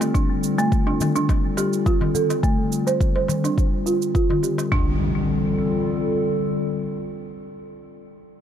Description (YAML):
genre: organic downtempo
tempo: 105 BPM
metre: 4/4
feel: swing 53% on 16ths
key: D minor pentatonic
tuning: A4 = 439 Hz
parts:
  - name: warbly tape-like pad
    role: sustained chords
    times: 0.0-7.8 s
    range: D3 to A4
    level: -24 LUFS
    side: left 2 dB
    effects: chorus, built-in reverb, sidechain pumping
  - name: cabasa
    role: drums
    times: 0.0-4.7 s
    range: none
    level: -33 LUFS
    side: right 12 dB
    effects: none
  - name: darbuka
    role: percussion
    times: 0.0-4.7 s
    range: none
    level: -29 LUFS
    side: left 3 dB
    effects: none
  - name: folk marimba with hard mallets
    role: arpeggios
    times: 0.1-5.0 s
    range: A3 to C5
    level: -24 LUFS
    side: right 2 dB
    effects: low-pass filter, ping-pong delay
  - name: electronic kick drum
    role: drums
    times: 0.1-4.8 s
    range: none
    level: -21 LUFS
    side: equal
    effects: none
  - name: impact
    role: sound effects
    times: 4.7-7.8 s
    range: none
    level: -29 LUFS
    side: equal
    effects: none
room: light reverb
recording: dark, warm production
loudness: -19 LUFS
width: side -9 dB against mid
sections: 0.0-4.7 A section; 4.7-7.0 B section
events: filter sweep on marimba 0.0-4.7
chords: 0.0 Dm